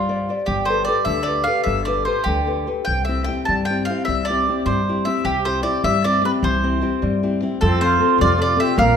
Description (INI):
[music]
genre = italian folk, Italian serenade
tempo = 102 BPM (dotted quarters)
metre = 6/8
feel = rubato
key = C major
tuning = A4 = 440 Hz
[part]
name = mandolin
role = melody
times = 0.0-9.0 s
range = F4 to A5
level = -20 LUFS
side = right 2 dB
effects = none
[part]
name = nylon-string guitar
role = accompaniment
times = 0.0-9.0 s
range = C3 to D5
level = -23 LUFS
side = left 5 dB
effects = none
[part]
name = upright bass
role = bass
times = 0.0-9.0 s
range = G1 to G2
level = -23 LUFS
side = equal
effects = none
[part]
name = mellow cor anglais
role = second line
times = 7.6-9.0 s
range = C4 to Bb4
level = -22 LUFS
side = right 4 dB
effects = none
[sound]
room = wet recital hall reverb, RT60 1.4 s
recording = minimal, uncompressed stereo recording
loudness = -17 LUFS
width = side -7 dB against mid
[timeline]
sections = 0.0-7.6 A section; 7.6-9.0 B section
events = none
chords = 0.5 Gadd9; 2.9 C; 7.6 F